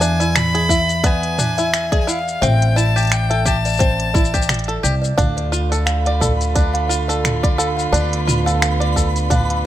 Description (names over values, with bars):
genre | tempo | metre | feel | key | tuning
folktronica | 87 BPM | 4/4 | swing 56% on 16ths | D dorian | A4 = 444 Hz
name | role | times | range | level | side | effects
clear violin | melody | 0.0-4.5 s | F5 to B5 | -22 LUFS | left 1 dB | tape echo
bluegrass banjo | arpeggios | 0.0-9.6 s | B3 to D5 | -23 LUFS | right 1 dB | tape echo
upright bass | bass | 0.0-9.7 s | A1 to E2 | -20 LUFS | equal | none
organic electronic drum kit | drums | 0.0-9.6 s | finger snaps, hi-hat, shaker, toms | -22 LUFS | equal | none
music box | second line | 0.2-9.6 s | D5 to G5 | -24 LUFS | equal | tape echo
electronic kick drum | drums | 0.7-9.5 s | none | -18 LUFS | equal | none
dark string quartet | sustained chords | 5.2-9.7 s | D3 to F4 | -26 LUFS | right 1 dB | none
flickering grainy texture | texture | 5.7-9.7 s | B5 | -28 LUFS | right 2 dB | built-in reverb
room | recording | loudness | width
light reverb, studio ambience | none | -15 LUFS | side -12 dB against mid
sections
0.0-9.7 A section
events
none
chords
0.0 E7; 2.4 Am7; 5.2 Dm